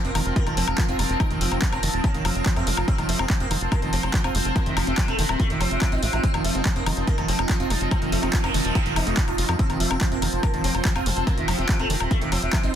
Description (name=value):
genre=psychedelic trance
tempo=143 BPM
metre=4/4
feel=straight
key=unclear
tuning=A4 = 444 Hz
part: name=sitar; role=melody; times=0.0-12.7 s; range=C3 to F4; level=-29 LUFS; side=equal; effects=phaser, sidechain pumping, tape echo
part: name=bubbling stepped-filter texture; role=sustained chords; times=0.0-12.8 s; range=C4 to C5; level=-32 LUFS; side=right 1 dB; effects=chorus, built-in reverb, sidechain pumping
part: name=overdriven acid bass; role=riff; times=0.0-12.8 s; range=Eb3 to F4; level=-31 LUFS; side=right 2 dB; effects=distortion, auto-pan, vintage 12-bit sampler grit, sidechain pumping, tape echo
part: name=tight sequencer bass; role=bass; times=0.0-12.7 s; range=Eb1 to F2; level=-27 LUFS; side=equal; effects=none
part: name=techno drum kit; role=drums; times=0.0-12.7 s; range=handclaps, hi-hat, woodblock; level=-28 LUFS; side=left 2 dB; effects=overdrive
part: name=ethereal airy pad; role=texture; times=0.0-12.8 s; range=C4 to F6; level=-32 LUFS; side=right 1 dB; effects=ensemble chorus, built-in reverb, sidechain pumping
part: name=electronic kick drum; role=drums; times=0.4-12.6 s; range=none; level=-24 LUFS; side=equal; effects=overdrive
part: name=noise sweep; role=sound effects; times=8.2-9.6 s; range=none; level=-33 LUFS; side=right 3 dB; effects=none
room=digital ambience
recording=dense, heavily limited modern master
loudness=-20 LUFS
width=side -9 dB against mid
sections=0.0-12.8 A section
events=noise sweep 8.2-9.6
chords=0.0 F5